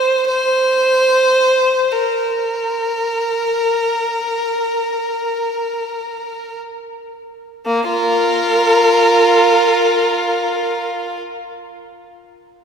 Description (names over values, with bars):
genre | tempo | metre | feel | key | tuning
classical, free, expressive piece for unaccompanied violin | free time | none | none | unclear | A4 = 439 Hz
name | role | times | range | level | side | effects
clear violin | solo | 0.0-11.2 s | Bb3 to C5 | -14 LUFS | equal | none
room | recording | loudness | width
wet church reverb, RT60 3.5 s | minimal, uncompressed stereo recording | -14 LUFS | side -6 dB against mid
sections
0.0-7.7 A section; 7.7-12.6 B section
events
slowing down 0.0-7.7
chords
none